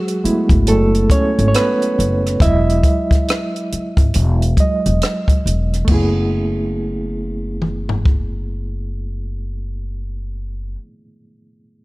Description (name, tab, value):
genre	R&B, neo-soul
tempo	69 BPM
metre	4/4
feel	swing 62% on 16ths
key	F# dorian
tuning	A4 = 441 Hz
part	bright reed electric piano	accompaniment	0.0-11.8 s	F#3 to E5	-19 LUFS	right 1 dB	fast tremolo
part	compact cocktail drum kit	drums	0.1-8.3 s	crash cymbal, hi-hat, kick drum, rim click, toms	-16 LUFS	equal	none
part	upright bass	bass	0.2-10.7 s	E1 to G#1	-19 LUFS	equal	none
room	light reverb, studio ambience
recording	none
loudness	-14 LUFS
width	side -21 dB against mid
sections	0.0-5.9 A section; 5.9-9.4 B section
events	reed electric piano solo 0.0-5.9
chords	0.0 F#m11; 2.4 Emaj9; 5.9 F#m11